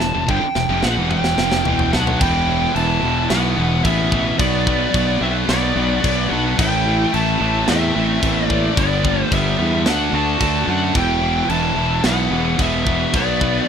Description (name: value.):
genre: heavy metal.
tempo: 110 BPM.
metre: 4/4.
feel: straight.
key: E minor.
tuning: A4 = 440 Hz.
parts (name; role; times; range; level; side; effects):
high-gain lead guitar; melody; 0.0-13.7 s; D5 to A5; -22 LUFS; equal; distortion, tape echo.
fuzz guitar; riff; 0.0-13.7 s; E2 to D4; -24 LUFS; equal; distortion.
heavy high-gain guitar; riff; 0.0-13.7 s; E2 to D4; -25 LUFS; left 17 dB; distortion.
heavy high-gain guitar; riff; 0.0-13.7 s; E2 to D4; -25 LUFS; right 17 dB; distortion.
fuzz fingered electric bass; bass; 0.0-13.6 s; E1 to F#2; -22 LUFS; equal; overdrive.
tight metal drum kit; drums; 0.0-13.5 s; crash cymbal, kick drum, snare drum, toms; -24 LUFS; equal; none.
nasal lead guitar with a parked wah; second line; 1.9-13.7 s; B3 to F#4; -27 LUFS; right 4 dB; overdrive.
room: little or no reverb.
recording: rough home demo mix.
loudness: -15 LUFS.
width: side -7 dB against mid.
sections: 0.0-2.2 A section; 2.2-13.7 B section.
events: drum fill 0.0-2.2; half time 2.2-13.7.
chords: 0.0 Em; 4.4 Bm; 6.6 Am; 8.8 G; 9.9 D; 11.0 Em; 13.1 Bm.